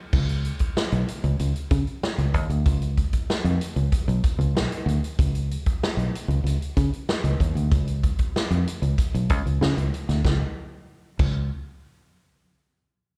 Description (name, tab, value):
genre	funk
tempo	95 BPM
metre	4/4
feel	straight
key	Db mixolydian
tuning	A4 = 443 Hz
part	fingered electric bass	bass	0.1-11.5 s	Cb2 to Db3	-25 LUFS	equal	none
part	swinging big-band drum kit	drums	0.1-11.3 s	crash cymbal, hi-hat, kick drum, snare drum	-27 LUFS	equal	none
room	little or no reverb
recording	live gig heard through the venue's PA, club reverb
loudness	-24 LUFS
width	mono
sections	0.1-10.2 A section; 10.2-12.8 B section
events	none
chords	none